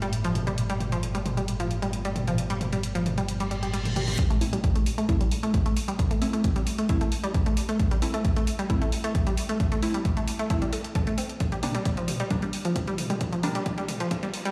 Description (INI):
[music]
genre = driving peak-time techno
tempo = 133 BPM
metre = 4/4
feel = straight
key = A phrygian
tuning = A4 = 440 Hz
[part]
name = analog pluck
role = riff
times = 0.0-14.5 s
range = F3 to A4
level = -32 LUFS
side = equal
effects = chorus, sidechain pumping, tape echo
[part]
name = gritty driven synth bass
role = bass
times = 0.0-4.2 s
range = G1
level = -34 LUFS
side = equal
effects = tube saturation, sidechain pumping
[part]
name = swarming drone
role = drone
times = 0.0-4.2 s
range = A2 to A3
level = -38 LUFS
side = equal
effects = none
[part]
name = punchy analog drum machine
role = drums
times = 0.0-14.5 s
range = hi-hat, toms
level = -36 LUFS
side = equal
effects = sidechain pumping on hats, sidechain pumping on toms
[part]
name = reverse cymbal and riser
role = sound effects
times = 3.5-4.2, 12.6-14.5 s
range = none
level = -41 LUFS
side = equal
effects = none
[part]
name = electronic kick drum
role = drums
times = 4.2-14.2 s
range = none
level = -28 LUFS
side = equal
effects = none
[part]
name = wavetable chord stab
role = stabs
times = 4.4-13.6 s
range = G3 to E4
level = -36 LUFS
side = equal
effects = sidechain pumping, tape echo
[sound]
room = light reverb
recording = played on a big sound system in a bare room, large studio reverb, high-pass filter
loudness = -27 LUFS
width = mono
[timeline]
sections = 0.0-4.2 A section; 4.2-14.5 B section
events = filter sweep on synth arpeggio sound 0.0-4.2, 4.2-14.5; reverse cymbal 3.5-4.2; build-up 4.2-14.5; filter sweep on synth stab 4.2-14.5; filter sweep 4.2-14.5; drum fill 11.4-14.5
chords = 0.0 Gsus2; 4.2 Am; 11.4 N.C.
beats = 0.13 | 0.58 1.03 1.48 1.93 | 2.38 2.83 3.29 3.74 | 4.19 4.64 5.09 5.54 | 5.99 6.44 6.89 7.34 | 7.80 8.25 8.70 9.15 | 9.60 10.05 10.50 10.95 | 11.40 11.86 12.31 12.76 | 13.21 13.66 14.11